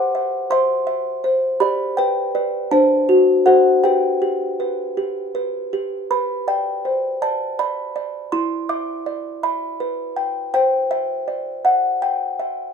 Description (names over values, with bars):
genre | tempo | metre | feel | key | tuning
classical, lullaby for music box | 54 BPM (dotted quarters) | 6/8 | straight | G major | A4 = 440 Hz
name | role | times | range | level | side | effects
music box | solo | 0.0-12.7 s | D4 to D6 | -17 LUFS | equal | none
room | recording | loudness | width
light reverb | band playing live in one room | -17 LUFS | side -6 dB against mid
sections
0.0-6.1 A section; 6.1-12.7 B section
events
none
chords
0.0 C/G; 1.6 G; 2.7 D7; 3.8 G; 6.1 G/B; 8.3 Em; 10.5 C